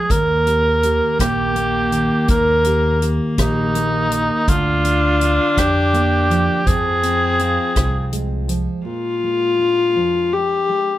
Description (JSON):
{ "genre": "acoustic folk-pop ballad", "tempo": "55 BPM (dotted quarters)", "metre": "6/8", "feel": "straight", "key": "Eb major", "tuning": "A4 = 440 Hz", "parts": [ { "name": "warm cor anglais", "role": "melody", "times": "0.0-8.1 s", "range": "Eb4 to Bb4", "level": "-18 LUFS", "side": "right 1 dB", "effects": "slapback echo" }, { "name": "nylon-string guitar", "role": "accompaniment", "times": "0.0-11.0 s", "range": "Eb2 to G4", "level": "-24 LUFS", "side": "right 2 dB", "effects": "none" }, { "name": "warm viola", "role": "second line", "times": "0.1-11.0 s", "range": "Bb3 to G4", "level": "-20 LUFS", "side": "left 4 dB", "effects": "none" }, { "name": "upright bass", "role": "bass", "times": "0.1-8.7 s", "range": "Bb1 to F2", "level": "-22 LUFS", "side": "equal", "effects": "none" }, { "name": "natural country drum kit", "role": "drums", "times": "0.1-8.7 s", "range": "hi-hat, kick drum, rim click", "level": "-21 LUFS", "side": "equal", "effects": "none" } ], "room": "little or no reverb", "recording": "close, detailed microphones", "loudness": "-15 LUFS", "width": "side -14 dB against mid", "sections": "0.0-8.9 A section; 8.9-11.0 B section", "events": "viola solo 8.9-11.0", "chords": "0.1 Eb; 4.5 Bb/D; 6.7 Fm; 8.9 Bb7" }